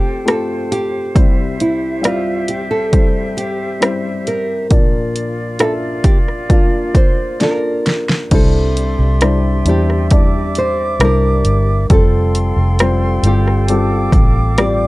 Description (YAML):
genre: pop ballad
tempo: 67 BPM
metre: 4/4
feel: straight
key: unclear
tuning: A4 = 441 Hz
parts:
  - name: nylon-string guitar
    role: melody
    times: 0.0-14.9 s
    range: E4 to D5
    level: -20 LUFS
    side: right 1 dB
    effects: none
  - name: dark upright piano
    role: accompaniment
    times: 0.0-14.9 s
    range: F1 to E5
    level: -20 LUFS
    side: left 3 dB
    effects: none
  - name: bright flute section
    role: sustained chords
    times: 0.0-14.9 s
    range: F4 to D6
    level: -25 LUFS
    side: right 1 dB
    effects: none
  - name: deep house drum kit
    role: drums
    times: 0.3-14.8 s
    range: crash cymbal, hi-hat, kick drum, rim click, snare drum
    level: -13 LUFS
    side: equal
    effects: overdrive, vintage 12-bit sampler grit
  - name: vintage muted fingered electric bass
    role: bass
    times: 8.3-14.9 s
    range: F1 to E2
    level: -15 LUFS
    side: equal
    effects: none
room: little or no reverb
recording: none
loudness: -12 LUFS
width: side -20 dB against mid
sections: 0.0-8.3 A section; 8.3-14.9 B section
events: drum fill 7.4-8.3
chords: 0.0 F; 1.2 C; 4.7 Bb; 8.3 Cadd9; 11.9 Fadd9